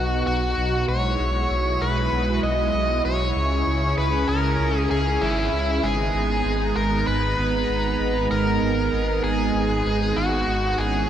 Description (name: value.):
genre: synthwave.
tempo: 97 BPM.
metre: 4/4.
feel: straight.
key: G# minor.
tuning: A4 = 439 Hz.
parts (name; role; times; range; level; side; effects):
smooth overdriven lead guitar; melody; 0.0-11.1 s; E4 to D#5; -24 LUFS; left 1 dB; tape echo.
warm analog pad; sustained chords; 0.0-11.1 s; C#3 to A#5; -25 LUFS; right 3 dB; chorus.
dark detuned saw bass; bass; 0.0-11.1 s; G#1 to C#2; -25 LUFS; equal; none.
room: wet plate reverb, RT60 2.9 s.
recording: dreamy mix soaked in reverb.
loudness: -20 LUFS.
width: side -10 dB against mid.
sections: 0.0-5.8 A section; 5.8-11.1 B section.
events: none.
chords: 0.0 B; 0.9 Eadd9/B; 3.4 C#m; 5.8 G#madd9.